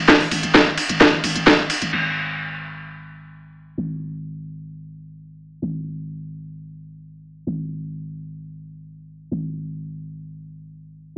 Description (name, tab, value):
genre	driving peak-time techno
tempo	130 BPM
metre	4/4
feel	straight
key	unclear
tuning	A4 = 440 Hz
part	growling 808-style bass	bass	0.0-11.1 s	G#1	-30 LUFS	equal	tube saturation, sidechain pumping, low-pass filter
part	electronic kick drum	drums	0.1-1.6 s	none	-18 LUFS	equal	overdrive
part	techno drum kit	drums	0.1-2.0 s	crash cymbal, hi-hat, ride cymbal, snare drum	-16 LUFS	equal	overdrive, sidechain pumping on hats, low-pass filter on hats, sidechain pumping on cymbals, low-pass filter on cymbals, low-pass filter on snare
room	light reverb, digital ambience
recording	AM radio sound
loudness	-18 LUFS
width	side -26 dB against mid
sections	0.0-1.9 A section; 1.9-11.2 B section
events	drop 0.0-1.9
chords	none